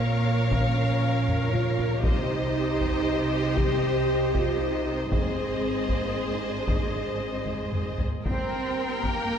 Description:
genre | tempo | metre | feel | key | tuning
cinematic, epic orchestral film score | 116 BPM | 3/4 | straight | unclear | A4 = 440 Hz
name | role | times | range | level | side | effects
warm symphonic violin section | melody | 0.0-9.4 s | Eb5 to G5 | -34 LUFS | left 4 dB | none
rich symphonic violin section | second line | 0.0-9.4 s | Bb4 to Db5 | -33 LUFS | left 1 dB | none
warm symphonic viola section | accompaniment | 0.0-9.4 s | G4 to Bb4 | -34 LUFS | right 2 dB | none
mellow French horn section | sustained chords | 0.0-9.4 s | Bb3 to G4 | -30 LUFS | equal | none
rich symphonic cello section | bass | 0.0-9.4 s | Ab2 to C4 | -32 LUFS | right 2 dB | none
rich symphonic double bass section | bass | 0.0-9.4 s | Ab1 to G2 | -30 LUFS | right 2 dB | none
taiko ensemble | drums | 0.5-9.4 s | none | -29 LUFS | equal | none
room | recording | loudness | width
wet scoring stage reverb, RT60 1.6 s | heard from further back in the room | -23 LUFS | side -8 dB against mid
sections
0.0-8.3 A section; 8.3-9.4 A section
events
drum fill 1.3-2.0, 7.5-8.3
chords
0.0 Bbm; 2.0 Cm; 5.1 Ab; 8.3 Gm

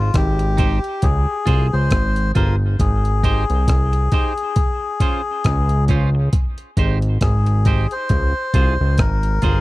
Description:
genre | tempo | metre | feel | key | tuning
roots reggae | 68 BPM | 4/4 | swing 57% on 16ths | Ab major | A4 = 440 Hz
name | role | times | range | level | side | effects
melodica | melody | 0.0-9.6 s | F4 to C5 | -24 LUFS | left 3 dB | tape echo
fat analog bass | bass | 0.0-9.6 s | G1 to Db2 | -17 LUFS | equal | none
breakbeat sampler-style drum kit | drums | 0.1-9.6 s | hi-hat, kick drum, rim click | -18 LUFS | equal | none
clean electric guitar | accompaniment | 0.4-9.6 s | Db4 to C5 | -28 LUFS | right 7 dB | tape echo
room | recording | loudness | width
little or no reverb | dry, close 1970s-style studio recording | -16 LUFS | side -19 dB against mid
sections
0.0-9.6 A section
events
none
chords
0.0 Abmaj7; 1.0 Dbmaj7; 2.8 Abmaj7; 4.6 Dbmaj7; 6.3 Abmaj7; 8.1 Dbmaj7

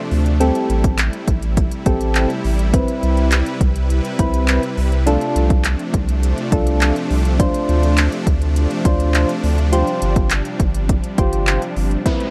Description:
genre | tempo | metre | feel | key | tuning
dance-pop | 103 BPM | 4/4 | straight | unclear | A4 = 438 Hz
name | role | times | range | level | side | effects
supersaw chords | sustained chords | 0.0-12.3 s | C3 to B4 | -26 LUFS | equal | sidechain pumping
warm sub bass | bass | 0.1-12.0 s | G1 to D2 | -20 LUFS | equal | sidechain pumping
deep house drum kit | drums | 0.1-12.3 s | handclaps, hi-hat, kick drum | -21 LUFS | equal | none
soft electric-piano-like synth keys | accompaniment | 0.4-12.3 s | C4 to C5 | -22 LUFS | equal | chorus, sidechain pumping
downlifter | sound effects | 12.1-12.3 s | none | -28 LUFS | equal | none
room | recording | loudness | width
little or no reverb | dry, close 1970s-style studio recording | -18 LUFS | mono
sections
0.0-12.1 A section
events
none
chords
0.4 Am7; 2.7 Cmaj7; 5.1 F6/C; 9.7 G7sus4

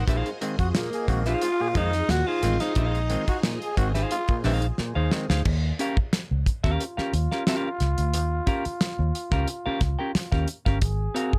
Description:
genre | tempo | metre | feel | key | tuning
funk | 89 BPM | 4/4 | straight | Eb mixolydian | A4 = 440 Hz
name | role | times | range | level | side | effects
clean electric guitar | accompaniment | 0.0-11.3 s | C4 to G5 | -31 LUFS | equal | none
phased string machine | sustained chords | 0.0-5.4 s | F4 to Eb5 | -40 LUFS | equal | ensemble chorus, phaser
vintage muted fingered electric bass | bass | 0.0-11.4 s | G1 to F2 | -28 LUFS | equal | none
overdriven clav | stabs | 0.1-5.4 s | Bb2 to C4 | -35 LUFS | equal | none
damped 70s drum kit | drums | 0.1-11.4 s | crash cymbal, hi-hat, kick drum, snare drum | -29 LUFS | equal | none
growling trombone | second line | 0.6-11.4 s | F4 to Ab4 | -34 LUFS | equal | none
breathy tenor saxophone | melody | 0.8-3.6 s | Bb3 to Gb4 | -30 LUFS | equal | none
room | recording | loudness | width
light reverb | none | -25 LUFS | mono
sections
0.0-5.5 A section; 5.5-11.4 B section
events
drum fill 4.8-5.5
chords
0.1 Bb9sus4; 5.5 Eb9; 10.8 Ab13

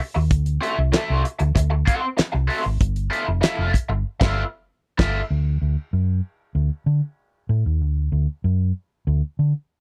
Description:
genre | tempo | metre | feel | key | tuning
funk | 96 BPM | 4/4 | straight | D mixolydian | A4 = 440 Hz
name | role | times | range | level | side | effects
overdriven electric guitar | accompaniment | 0.0-5.2 s | B3 to F#5 | -27 LUFS | equal | wah
damped 70s drum kit | drums | 0.0-5.2 s | crash cymbal, handclaps, hi-hat, kick drum, snare drum | -22 LUFS | equal | none
hollow-body short-scale fingered electric bass | bass | 0.2-9.5 s | F1 to D3 | -22 LUFS | equal | none
room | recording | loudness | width
little or no reverb | dry, close 1970s-style studio recording | -22 LUFS | mono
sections
0.0-5.3 A section; 5.3-9.8 B section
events
band accent 4.1-5.3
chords
0.0 D9; 2.8 G13; 5.3 D

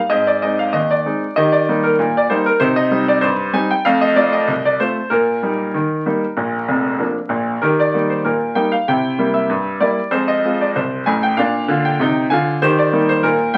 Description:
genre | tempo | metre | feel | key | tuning
ragtime piano | 96 BPM | 2/4 | swing 55% on 16ths | Eb major | A4 = 440 Hz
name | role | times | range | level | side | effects
clear grand piano | solo | 0.0-13.6 s | F1 to Ab5 | -17 LUFS | equal | none
room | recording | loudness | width
wet club reverb, RT60 0.6 s | very old 78 rpm record, vinyl crackle | -17 LUFS | mono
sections
0.0-13.6 A section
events
none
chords
0.1 Ab; 1.4 Eb; 2.6 Cm; 3.9 F; 5.1 Eb/Bb; 6.4 Bb; 7.6 Eb; 8.9 C7; 10.1 Fm; 11.4 Bb; 12.6 Eb

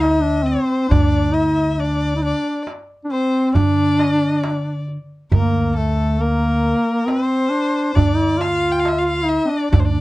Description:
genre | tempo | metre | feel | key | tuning
Arabic maqam ensemble | 136 BPM (eighths) | 10/8 | straight | D maqam bayati | A4 = 440 Hz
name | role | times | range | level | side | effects
mellow duduk | melody | 0.0-10.0 s | A3 to F4 | -18 LUFS | equal | none
rich violin | second line | 0.0-10.0 s | A4 to G5 | -25 LUFS | left 4 dB | none
upright bass | bass | 0.0-10.0 s | D2 to D3 | -21 LUFS | equal | none
darbuka | percussion | 0.0-9.9 s | none | -19 LUFS | right 2 dB | none
room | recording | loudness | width
light reverb | dark, warm production | -16 LUFS | side -18 dB against mid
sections
0.0-10.0 A section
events
none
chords
none

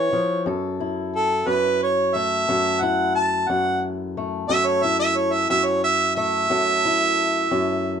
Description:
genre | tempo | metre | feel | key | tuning
acoustic country blues, solo or duo | 60 BPM (dotted quarters) | 12/8 | straight | F# minor | A4 = 440 Hz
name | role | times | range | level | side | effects
warm harmonica | melody | 0.0-8.0 s | A4 to A5 | -20 LUFS | right 2 dB | none
fingerpicked swing-style acoustic guitar | accompaniment | 0.0-8.0 s | F#2 to A4 | -24 LUFS | left 2 dB | none
room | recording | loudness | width
moderate studio reverb, RT60 0.5 s | dark, warm production | -19 LUFS | side -7 dB against mid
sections
0.5-8.0 A section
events
harmonica solo 0.5-8.0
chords
0.5 F#m7

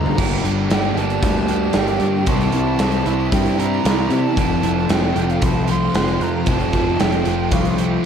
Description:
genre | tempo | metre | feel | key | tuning
rock, shoegaze and dream pop | 114 BPM | 4/4 | straight | unclear | A4 = 437 Hz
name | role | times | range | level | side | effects
breathy jazz flute | melody | 0.0-7.8 s | F5 to C6 | -26 LUFS | right 4 dB | analog delay
icy glass pad | sustained chords | 0.0-8.1 s | G3 to C6 | -29 LUFS | right 3 dB | chorus, built-in reverb
crunchy overdriven guitar | riff | 0.0-8.1 s | F2 to G4 | -23 LUFS | right 10 dB | reverse reverb
thick fuzz guitar | riff | 0.0-8.0 s | F2 to C4 | -22 LUFS | left 10 dB | distortion, wide subtle chorus
growling picked electric bass | bass | 0.0-8.0 s | F1 to C3 | -23 LUFS | equal | overdrive
gated 80s drum kit | drums | 0.1-7.9 s | crash cymbal, hi-hat, kick drum, snare drum, toms | -21 LUFS | right 1 dB | none
room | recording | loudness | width
light reverb, studio ambience | none | -16 LUFS | side -7 dB against mid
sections
0.2-8.1 A section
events
drum fill 0.0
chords
0.2 Gmadd9; 2.3 Cadd9; 4.4 F

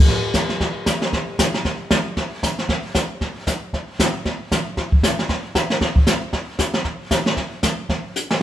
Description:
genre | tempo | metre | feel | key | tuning
jazz | 231 BPM | 4/4 | swing 58% on 8ths | none | none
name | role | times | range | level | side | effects
jazz brush drum kit | drums | 0.1-8.4 s | brushed snare drum, hi-hat, kick drum, snare drum | -18 LUFS | equal | none
room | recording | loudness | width
light reverb | band playing live in one room | -19 LUFS | side -12 dB against mid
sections
0.1-8.4 A section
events
drum fill 8.2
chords
none

